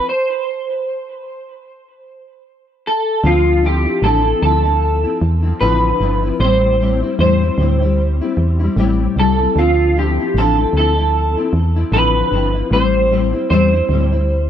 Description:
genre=indie pop, bedroom pop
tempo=76 BPM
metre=4/4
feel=swing 55% on 16ths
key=D dorian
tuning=A4 = 440 Hz
part: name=electric guitar through a small old amp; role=melody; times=0.0-14.5 s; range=F4 to C5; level=-17 LUFS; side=right 1 dB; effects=ensemble chorus, tape echo
part: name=nylon-string guitar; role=accompaniment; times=0.0-14.5 s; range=A2 to E4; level=-19 LUFS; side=left 5 dB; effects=ensemble chorus, warbly pitch drift
part: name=solid FM bass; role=bass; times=3.2-14.5 s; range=G1 to E2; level=-16 LUFS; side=equal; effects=none
room=little or no reverb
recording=dry, close 1970s-style studio recording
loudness=-13 LUFS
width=side -9 dB against mid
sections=0.0-3.2 A section; 3.2-14.5 B section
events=stop 0.1-3.2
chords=0.1 N.C.; 3.2 Dm9; 6.4 Am7; 9.6 Dm9; 12.7 Am7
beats=| 0.08 0.87 1.66 2.45 | 3.24 4.03 4.82 5.61 | 6.40 7.19 7.98 8.77 | 9.56 10.35 11.13 11.92 | 12.71 13.50 14.29

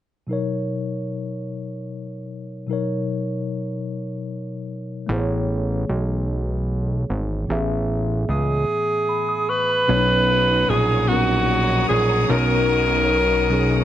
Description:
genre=R&B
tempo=50 BPM (dotted quarters)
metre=6/8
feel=straight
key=B major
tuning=A4 = 442 Hz
part: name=mellow tine electric piano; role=accompaniment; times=0.3-13.8 s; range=A2 to D#6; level=-25 LUFS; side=left 2 dB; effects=medium stereo tremolo, plate reverb
part: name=fat analog bass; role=bass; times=5.1-13.8 s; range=G#1 to C#2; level=-22 LUFS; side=right 1 dB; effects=none
part: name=breathy alto saxophone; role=melody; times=8.3-13.8 s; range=F#4 to B4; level=-19 LUFS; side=equal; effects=slapback echo, plate reverb
part: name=semi-hollow electric guitar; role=second line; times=9.9-13.8 s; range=B3 to C#5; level=-29 LUFS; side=right 10 dB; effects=ensemble chorus, plate reverb
part: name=warm studio string section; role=sustained chords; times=9.9-13.8 s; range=C#5 to D#6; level=-27 LUFS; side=left 3 dB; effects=plate reverb
room=moderate studio reverb, RT60 0.8 s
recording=nothing above 10.5 kHz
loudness=-19 LUFS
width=side -11 dB against mid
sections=0.3-9.9 A section; 9.9-13.8 B section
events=none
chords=0.3 Bmaj9; 5.1 Amaj9; 9.9 Bmaj9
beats=| 0.29 1.49 | 2.69 3.89 | 5.09 6.29 | 7.49 8.69 | 9.89 11.09 | 12.29 13.49

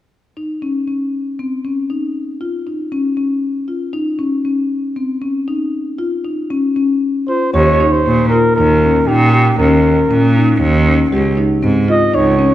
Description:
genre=contemporary instrumental, chamber music in an uneven meter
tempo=117 BPM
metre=7/4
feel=straight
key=Eb mixolydian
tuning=A4 = 436 Hz
part: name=marimba with soft mallets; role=arpeggios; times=0.4-12.5 s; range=Bb3 to G4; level=-16 LUFS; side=left 2 dB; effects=none
part: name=warm flugelhorn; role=melody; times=7.3-12.5 s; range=G4 to Eb5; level=-14 LUFS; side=equal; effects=none
part: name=bright cello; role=bass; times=7.5-12.5 s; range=Db2 to Bb2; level=-13 LUFS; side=right 2 dB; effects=none
room=moderate recital hall reverb, RT60 1.4 s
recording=dark, warm production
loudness=-13 LUFS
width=side -13 dB against mid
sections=0.4-7.5 A section; 7.5-12.5 B section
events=none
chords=0.4 N.C.; 7.5 Eb7(no3); 11.1 Dbmaj9#11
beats=| 0.36 0.88 1.39 1.90 2.41 2.92 3.43 | 3.94 4.45 4.96 5.47 5.98 6.50 7.02 | 7.54 8.06 8.57 9.09 9.60 10.11 10.62 | 11.13 11.63 12.14

